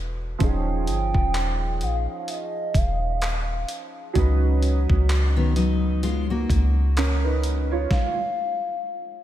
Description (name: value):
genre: contemporary R&B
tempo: 64 BPM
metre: 4/4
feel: swing 58% on 16ths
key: unclear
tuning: A4 = 440 Hz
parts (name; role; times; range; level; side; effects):
- warm baby grand piano; accompaniment; 0.0-8.2 s; F3 to Db5; -30 LUFS; right 4 dB; analog chorus
- soft 808-style bass; bass; 0.0-7.9 s; Eb1 to Db2; -22 LUFS; equal; none
- gliding portamento lead; melody; 0.4-8.8 s; Eb5 to G5; -29 LUFS; equal; chorus, phaser, analog delay
- dusty soul sampler-style drum kit; drums; 0.4-8.2 s; handclaps, hi-hat, kick drum, snare drum; -26 LUFS; equal; none
- fingerpicked steel-string acoustic guitar; arpeggios; 5.4-7.7 s; Eb3 to Gb4; -26 LUFS; left 4 dB; analog delay
room: light reverb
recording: none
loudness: -21 LUFS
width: side -12 dB against mid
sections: 0.0-9.2 A section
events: stop 7.9-9.2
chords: 0.4 Eb9sus4; 4.2 Db9sus4; 7.9 N.C.